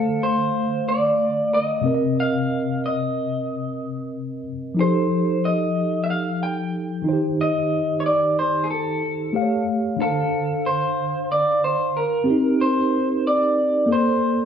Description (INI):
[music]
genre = soul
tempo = 92 BPM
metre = 4/4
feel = swing 54% on 16ths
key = C dorian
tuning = A4 = 444 Hz
[part]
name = electric guitar through a small old amp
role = melody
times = 0.0-14.5 s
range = Ab4 to G5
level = -22 LUFS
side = right 1 dB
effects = spring reverb
[part]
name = mellow tine electric piano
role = accompaniment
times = 0.0-14.5 s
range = C3 to F5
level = -22 LUFS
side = left 1 dB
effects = medium stereo tremolo
[sound]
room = wet stone room reverb, RT60 1.0 s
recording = band playing live in one room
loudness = -19 LUFS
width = side -8 dB against mid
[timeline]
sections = 0.0-14.5 A section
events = none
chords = 0.0 Dm7; 1.9 Cm7; 4.8 F9; 7.1 Eb6; 9.3 A7b13; 10.0 Dm7; 12.3 Cm7; 13.9 Bbmaj9